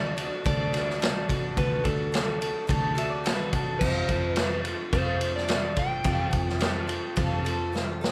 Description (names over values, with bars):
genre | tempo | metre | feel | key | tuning
folk rock and heartland rock | 107 BPM | 4/4 | straight | unclear | A4 = 440 Hz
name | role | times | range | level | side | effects
electric slide guitar | melody | 0.0-7.7 s | A4 to G5 | -34 LUFS | equal | none
picked twelve-string acoustic guitar | accompaniment | 0.0-8.1 s | D3 to A4 | -37 LUFS | equal | none
fingered electric bass | bass | 0.0-8.0 s | D2 to F2 | -35 LUFS | equal | none
vintage drum kit | drums | 0.2-8.1 s | crash cymbal, kick drum, ride cymbal, snare drum | -30 LUFS | equal | none
pedal steel guitar | second line | 2.7-7.8 s | F4 to A5 | -36 LUFS | equal | none
room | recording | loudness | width
moderate large studio reverb, RT60 1.1 s | band playing live in one room | -27 LUFS | mono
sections
0.0-8.1 A section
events
drum fill 7.7-8.1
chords
0.0 D; 3.8 Fadd9